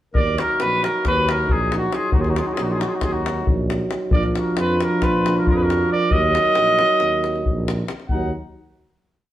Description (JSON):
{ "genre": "balkan folk, Balkan brass band", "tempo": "272 BPM (eighths)", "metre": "9/8", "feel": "straight", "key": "Eb harmonic minor", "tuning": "A4 = 444 Hz", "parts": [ { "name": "bright clarinet", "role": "second line", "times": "0.1-8.3 s", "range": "Eb4 to Bb4", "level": "-30 LUFS", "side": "left 2 dB", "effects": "none" }, { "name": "mellow French horn", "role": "accompaniment", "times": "0.1-8.3 s", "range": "D4 to Eb4", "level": "-30 LUFS", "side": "left 3 dB", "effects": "none" }, { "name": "mellow tuba", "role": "bass", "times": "0.1-8.3 s", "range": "Bb1 to F2", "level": "-26 LUFS", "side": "equal", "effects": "none" }, { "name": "davul", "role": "percussion", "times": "0.1-8.3 s", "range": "none", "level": "-23 LUFS", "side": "left 1 dB", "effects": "none" }, { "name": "warm trumpet", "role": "melody", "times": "0.2-8.3 s", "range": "Gb4 to Gb5", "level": "-21 LUFS", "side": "right 1 dB", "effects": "none" }, { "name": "mellow euphonium", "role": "accompaniment", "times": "0.2-8.3 s", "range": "F3 to Gb3", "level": "-24 LUFS", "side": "right 2 dB", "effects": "none" } ], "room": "wet large studio reverb, RT60 0.9 s", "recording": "band playing live in one room", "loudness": "-17 LUFS", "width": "side -13 dB against mid", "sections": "0.1-8.1 A section; 8.1-9.3 final chord", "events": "none", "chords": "0.1 Ebm; 4.1 Bb; 6.1 Ebm" }